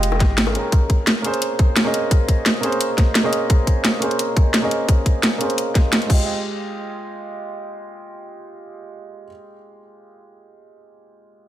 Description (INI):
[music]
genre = liquid drum and bass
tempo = 173 BPM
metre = 4/4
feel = straight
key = unclear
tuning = A4 = 440 Hz
[part]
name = warm baby grand piano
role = accompaniment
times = 0.0-11.5 s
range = Ab3 to G5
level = -23 LUFS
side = right 1 dB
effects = low-pass filter, ping-pong delay
[part]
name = upright bass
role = bass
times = 0.0-0.5 s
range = F1 to Ab1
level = -22 LUFS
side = equal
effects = none
[part]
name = drum and bass drum kit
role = drums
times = 0.0-6.2 s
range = crash cymbal, hi-hat, snare drum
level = -20 LUFS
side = equal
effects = overdrive, studio reverb
[part]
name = bongos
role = percussion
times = 0.1-0.5 s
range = none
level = -28 LUFS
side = left 6 dB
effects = none
[part]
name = electronic kick drum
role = drums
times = 0.2-6.2 s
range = none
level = -15 LUFS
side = equal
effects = overdrive, studio reverb
[sound]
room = light reverb, small room reverb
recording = none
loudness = -16 LUFS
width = side -12 dB against mid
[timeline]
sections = 0.0-6.3 A section; 6.3-9.0 B section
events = filter sweep on grand piano 0.0-6.3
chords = 0.0 Fm9; 0.7 Bbm9; 6.1 Fm9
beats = 0.03 0.38 | 0.72 1.07 1.42 1.76 | 2.11 2.46 2.80 3.15 | 3.50 3.85 4.19 4.54 | 4.88 5.23 5.58 5.93 | 6.27 6.62 6.97 7.31 | 7.66 8.01 8.35 8.70